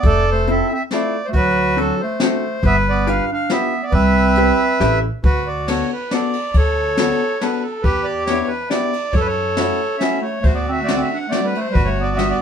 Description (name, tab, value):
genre	musette waltz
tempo	139 BPM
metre	3/4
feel	straight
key	C major, D major from 5.2 s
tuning	A4 = 439 Hz
part	accordion	melody	0.0-12.4 s	F#4 to F#5	-19 LUFS	right 2 dB	none
part	warm clarinet	second line	0.0-5.0, 10.0-12.4 s	F#3 to D4	-23 LUFS	right 3 dB	none
part	upright bass	bass	0.0-12.3 s	F1 to F#2	-20 LUFS	equal	none
part	jazz brush drum kit	drums	0.0-12.3 s	hi-hat, kick drum, ride cymbal, snare drum	-22 LUFS	equal	none
part	vintage hollow-body jazz guitar	accompaniment	0.5-12.4 s	G3 to B4	-22 LUFS	left 5 dB	none
room	moderate studio reverb, RT60 0.5 s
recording	minimal, uncompressed stereo recording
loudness	-16 LUFS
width	side -7 dB against mid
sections	0.0-5.2 A section; 5.2-12.4 B section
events	none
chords	0.0 Fmaj7; 1.3 D7; 2.6 G7; 3.9 Cmaj7; 4.8 A7; 5.2 D6; 7.8 Em7; 9.1 F#m7; 10.4 D7; 11.8 Gmaj7